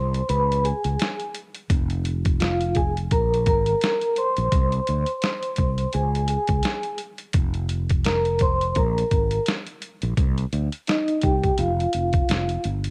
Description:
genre	hip hop, jazz-hop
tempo	85 BPM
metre	4/4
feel	swing 58% on 16ths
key	F minor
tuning	A4 = 439 Hz
part	vibraphone with soft mallets	accompaniment	0.0-12.6 s	Eb4 to C6	-26 LUFS	equal	none
part	fretless electric bass	bass	0.0-12.9 s	F1 to D2	-27 LUFS	equal	none
part	boom bap sampler-style drum kit	drums	0.1-12.9 s	hi-hat, kick drum, snare drum	-26 LUFS	equal	none
room	digital ambience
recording	none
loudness	-23 LUFS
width	mono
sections	0.0-12.9 A section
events	break 0.0-1.7; vibraphone solo 0.0-12.9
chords	0.3 Db5; 1.7 Fm; 3.1 Bbsus2; 4.5 N.C.; 5.9 Db5; 7.3 F5; 8.8 Absus2; 10.2 Cm; 11.6 Fsus2

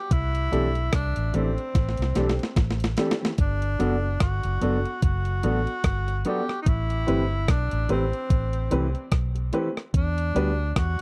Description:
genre	lovers rock reggae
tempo	73 BPM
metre	4/4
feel	swing 57% on 16ths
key	G major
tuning	A4 = 440 Hz
part	breathy tenor saxophone	melody	0.0-11.0 s	C4 to G4	-34 LUFS	equal	tape echo
part	vintage muted fingered electric bass	bass	0.1-11.0 s	F#1 to E2	-28 LUFS	equal	none
part	crisp 8-bit digital drum machine	drums	0.1-11.0 s	hi-hat, kick drum, rim click, snare drum	-27 LUFS	equal	none
part	warm grand piano	accompaniment	0.5-10.5 s	B3 to B4	-31 LUFS	equal	slapback echo
part	mellow electric guitar	stabs	0.5-10.5 s	E3 to G4	-32 LUFS	equal	none
room	little or no reverb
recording	dry, close 1970s-style studio recording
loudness	-25 LUFS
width	mono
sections	0.0-11.0 A section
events	drum fill 1.7-3.4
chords	0.1 C6; 3.4 Gmaj7; 6.7 Am7; 9.9 Em7

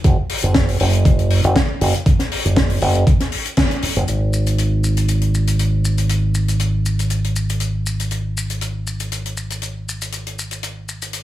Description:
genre	nu-disco, nu disco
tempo	119 BPM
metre	4/4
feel	swing 54% on 16ths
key	unclear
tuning	A4 = 440 Hz
part	fingered electric bass with an envelope filter	bass	0.0-11.2 s	Gb1 to Ab1	-18 LUFS	equal	tube saturation
part	electronic kick drum	drums	0.0-3.7 s	none	-15 LUFS	equal	none
part	tight funk drum kit	drums	0.0-11.2 s	hi-hat, shaker, snare drum	-23 LUFS	left 2 dB	none
room	little or no reverb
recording	small room reverb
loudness	-16 LUFS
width	side -14 dB against mid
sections	0.0-4.1 A section; 4.1-11.2 B section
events	band accent 3.6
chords	none

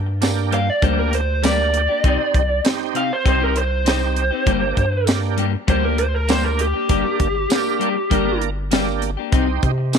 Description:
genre	straight-eighth soul blues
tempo	99 BPM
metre	4/4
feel	straight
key	G minor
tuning	A4 = 440 Hz
part	rubbery square bass	bass	0.0-10.0 s	G1 to C3	-22 LUFS	equal	none
part	clean electric guitar	stabs	0.1-10.0 s	C3 to G4	-25 LUFS	left 14 dB	none
part	bright tonewheel organ	accompaniment	0.2-10.0 s	Bb3 to Bb4	-26 LUFS	right 14 dB	slow rotary speaker, overdrive, chorus vibrato
part	tight funk drum kit	drums	0.2-10.0 s	hi-hat, kick drum, snare drum, tambourine	-20 LUFS	equal	none
part	lead guitar through a small cranked amp	melody	0.5-8.4 s	G4 to F5	-21 LUFS	right 1 dB	overdrive
part	bright horn section	sustained chords	9.3-10.0 s	G4 to Eb5	-32 LUFS	right 14 dB	none
room	studio reverb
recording	1960s-style stereo with parts hard left and right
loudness	-16 LUFS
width	side -7 dB against mid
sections	0.0-10.0 A section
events	lead electric guitar solo 0.0-10.0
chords	0.0 Gm; 2.0 Cm; 4.5 Gm; 9.3 Cm

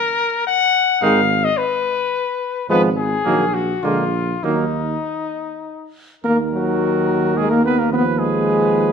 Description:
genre	classical, brass quintet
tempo	96-110 BPM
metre	3/4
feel	rubato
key	Eb minor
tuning	A4 = 441 Hz
part	warm trumpet	melody	0.0-8.9 s	Eb4 to Gb5	-20 LUFS	left 6 dB	none
part	warm trumpet	second line	1.0-8.9 s	Bb3 to Cb5	-24 LUFS	right 8 dB	none
part	clear French horn	accompaniment	1.0-8.9 s	Gb3 to Cb4	-20 LUFS	left 2 dB	none
part	warm euphonium	accompaniment	1.0-8.9 s	D3 to F3	-23 LUFS	right 3 dB	none
part	mellow tuba	bass	1.0-8.9 s	Ab1 to Eb2	-23 LUFS	right 4 dB	none
room	moderate recital hall reverb, RT60 1.5 s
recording	none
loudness	-16 LUFS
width	side -6 dB against mid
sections	0.0-6.2 A section; 6.2-8.9 B section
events	none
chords	0.0 Ebm (rootless); 1.0 Abm; 2.7 Fdim/Ab; 3.3 Ebm/Bb; 3.8 Bb7; 4.4 N.C.; 6.2 Ebm; 7.9 Fm7b5/Eb

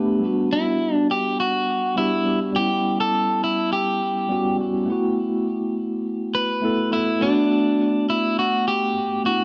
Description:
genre	chillout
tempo	103 BPM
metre	4/4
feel	straight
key	E dorian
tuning	A4 = 440 Hz
part	mellow tine electric piano	accompaniment	0.0-9.4 s	G3 to A4	-25 LUFS	equal	digital delay
part	electric guitar at the edge of break-up	melody	0.5-9.4 s	D4 to B4	-24 LUFS	equal	delay
room	moderate plate reverb, RT60 2.2 s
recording	none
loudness	-22 LUFS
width	mono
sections	0.2-9.4 A section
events	none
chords	0.2 Em9; 2.6 A13/G (rootless); 4.9 B7sus4/A; 7.2 Gmaj7

